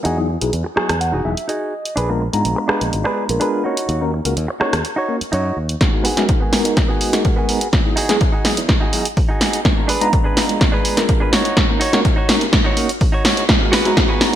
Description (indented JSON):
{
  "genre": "filtered disco house",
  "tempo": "125 BPM",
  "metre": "4/4",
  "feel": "straight",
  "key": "G# minor",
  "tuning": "A4 = 440 Hz",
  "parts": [
    { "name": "direct-recorded clean electric guitar", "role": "riff", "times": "0.0-14.3 s", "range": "B3 to G#5", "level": "-23 LUFS", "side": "right 1 dB", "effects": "vintage 12-bit sampler grit, sidechain pumping, low-pass filter" },
    { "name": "punchy analog drum machine", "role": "drums", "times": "0.0-14.4 s", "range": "hi-hat, rim click, snare drum", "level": "-18 LUFS", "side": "equal", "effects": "sidechain pumping on hats, gated reverb" },
    { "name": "modern bright fingered electric bass", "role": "bass", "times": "0.1-14.4 s", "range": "E1 to G#2", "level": "-24 LUFS", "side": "equal", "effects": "sidechain pumping, high-pass filter, low-pass filter" },
    { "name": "bell-like tine electric piano", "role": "accompaniment", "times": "0.2-14.4 s", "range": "F#3 to A#5", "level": "-22 LUFS", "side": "equal", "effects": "medium stereo tremolo, phaser, vintage 12-bit sampler grit, sidechain pumping, low-pass filter" },
    { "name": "electronic kick drum", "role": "drums", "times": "5.8-14.1 s", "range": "none", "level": "-17 LUFS", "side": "equal", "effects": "none" }
  ],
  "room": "moderate plate reverb, RT60 1.6 s",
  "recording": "bright 1980s-style digital production",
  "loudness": "-15 LUFS",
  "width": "side -11 dB against mid",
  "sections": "0.0-5.8 A section; 5.8-14.4 B section",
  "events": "filter sweep 0.0-5.8, 5.8-14.4; clean electric guitar fill 0.5-2.0; build-up 5.8-14.4; drum fill 5.8-14.4",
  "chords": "0.1 Emaj9; 2.0 A#7b9; 3.6 D#m7; 5.8 G#m7; 7.7 Emaj9; 9.7 A#7b9; 11.3 D#m7; 13.5 G#m7",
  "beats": "| 0.05 0.53 1.01 1.49 | 1.97 2.45 2.93 3.41 | 3.89 4.37 4.85 5.33 | 5.81 6.29 6.77 7.25 | 7.73 8.21 8.69 9.17 | 9.65 10.13 10.61 11.09 | 11.57 12.05 12.53 13.01 | 13.49 13.97"
}